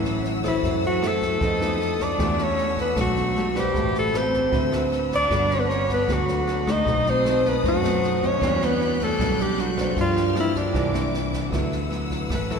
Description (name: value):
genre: bossa nova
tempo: 154 BPM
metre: 4/4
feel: straight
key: D major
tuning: A4 = 436 Hz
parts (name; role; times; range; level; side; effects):
- breathy alto saxophone; melody; 0.0-12.6 s; D4 to Eb5; -24 LUFS; left 1 dB; none
- clear cello; second line; 0.0-11.1 s; D3 to Eb4; -30 LUFS; right 2 dB; none
- nylon-string guitar; accompaniment; 0.0-12.6 s; G2 to B4; -27 LUFS; left 2 dB; none
- warm concert grand piano; accompaniment; 0.0-12.6 s; C4 to B5; -35 LUFS; right 5 dB; none
- warm symphonic string section; sustained chords; 0.0-12.6 s; A4 to G6; -34 LUFS; left 2 dB; none
- fingered electric bass; bass; 0.0-12.6 s; G1 to G2; -28 LUFS; equal; none
- jazz brush drum kit; drums; 0.0-12.5 s; kick drum, rim click, snare drum; -31 LUFS; right 1 dB; none
room: wet church reverb, RT60 3.5 s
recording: recorded in a church or concert hall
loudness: -20 LUFS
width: side -6 dB against mid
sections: 0.0-11.5 A section; 11.5-12.6 B section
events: none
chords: 0.0 Dmaj9 (rootless); 0.6 F#m7b5; 1.4 F7#11; 2.2 Em11; 3.7 Am9; 4.5 D13; 5.3 Gmaj9; 6.9 B7b9; 8.4 Em9; 10.0 Gm7; 10.7 C9; 11.5 D69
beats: 0.24 | 0.63 1.02 1.41 1.80 | 2.19 2.58 2.97 3.36 | 3.75 4.14 4.53 4.92 | 5.30 5.69 6.08 6.47 | 6.86 7.25 7.64 8.03 | 8.42 8.81 9.20 9.58 | 9.97 10.36 10.75 11.14 | 11.53 11.91 12.30